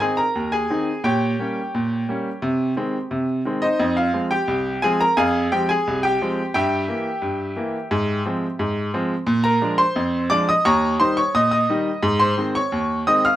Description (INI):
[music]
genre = ragtime piano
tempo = 87 BPM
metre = 2/4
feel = straight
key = Ab major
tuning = A4 = 440 Hz
[part]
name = bright baby grand piano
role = solo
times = 0.0-13.4 s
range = C2 to F6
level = -18 LUFS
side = equal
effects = none
[sound]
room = light reverb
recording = none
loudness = -18 LUFS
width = side -13 dB against mid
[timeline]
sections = 0.0-13.4 A section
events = none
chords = 0.0 Ab; 1.0 Gdim/Bb; 2.4 Ab/C; 3.8 Fm; 6.5 Edim/G; 7.9 Fm/Ab; 9.3 Bb7; 10.7 Eb7; 12.0 Ab